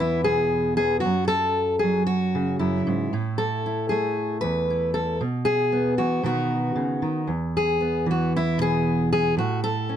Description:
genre	folk, solo fingerstyle acoustic guitar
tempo	115 BPM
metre	4/4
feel	straight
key	E major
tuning	A4 = 440 Hz
part	fingerpicked steel-string acoustic guitar	solo	0.0-10.0 s	E2 to B4	-21 LUFS	equal	none
room	light reverb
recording	close, detailed microphones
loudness	-21 LUFS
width	side -9 dB against mid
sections	0.0-10.0 A section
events	none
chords	0.0 E; 1.1 F#m; 3.1 A5; 5.2 Bsus4; 6.2 B; 7.3 E; 9.4 A

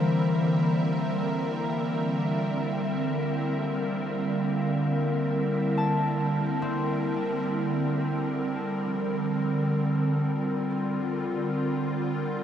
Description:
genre	ambient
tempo	free time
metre	none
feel	none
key	Bb lydian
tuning	A4 = 440 Hz
part	evolving wavetable pad	sustained chords	0.0-12.4 s	D3 to E5	-26 LUFS	right 1 dB	ensemble chorus, built-in reverb
part	concert harp	arpeggios	0.0-12.4 s	E3 to A5	-32 LUFS	left 2 dB	tape echo
part	overtone-sweeping drone	drone	0.0-7.6 s	Bb3 to E4	-35 LUFS	equal	chorus, built-in reverb
room	wet huge ambient reverb, RT60 8.2 s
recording	dark, warm production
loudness	-25 LUFS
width	side -9 dB against mid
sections	0.0-7.5 A section; 7.5-12.4 B section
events	none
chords	0.0 C9; 7.5 Bb69

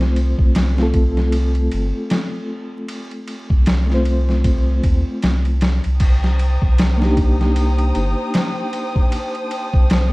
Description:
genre	trip hop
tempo	77 BPM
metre	4/4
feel	swing 58% on 16ths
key	C dorian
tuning	A4 = 438 Hz
part	mellow reed electric piano	accompaniment	0.0-10.1 s	A3 to C5	-23 LUFS	equal	fast tremolo, harmonic tremolo, tape echo
part	warm sub bass	bass	0.0-10.1 s	G1 to Eb2	-17 LUFS	equal	none
part	trip hop sampler-style drum kit	drums	0.0-10.1 s	crash cymbal, kick drum, ride cymbal, snare drum	-19 LUFS	equal	none
part	dark studio violin section	sustained chords	6.0-10.1 s	C5 to Eb6	-26 LUFS	equal	none
room	little or no reverb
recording	dark, warm production, vinyl crackle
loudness	-15 LUFS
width	side -22 dB against mid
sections	0.0-6.0 A section; 6.0-10.1 B section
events	none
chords	0.0 F; 6.0 Cm7

